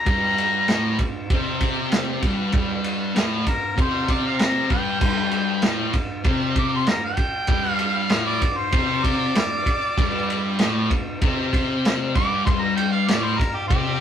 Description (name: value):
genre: garage rock duo or trio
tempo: 97 BPM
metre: 4/4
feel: straight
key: G minor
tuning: A4 = 440 Hz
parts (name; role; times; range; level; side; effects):
- clear harmonica; melody; 0.0-14.0 s; G4 to D6; -24 LUFS; equal; overdrive
- thick fuzz guitar; riff; 0.1-14.0 s; G2 to C3; -23 LUFS; left 1 dB; distortion
- vintage drum kit; drums; 0.1-13.8 s; crash cymbal, kick drum, ride cymbal, snare drum; -23 LUFS; right 1 dB; none
room: light reverb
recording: rough rehearsal-room recording, warm saturation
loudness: -19 LUFS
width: side -9 dB against mid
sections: 0.0-14.0 A section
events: harmonica solo 0.0-14.0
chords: 0.0 Gsus24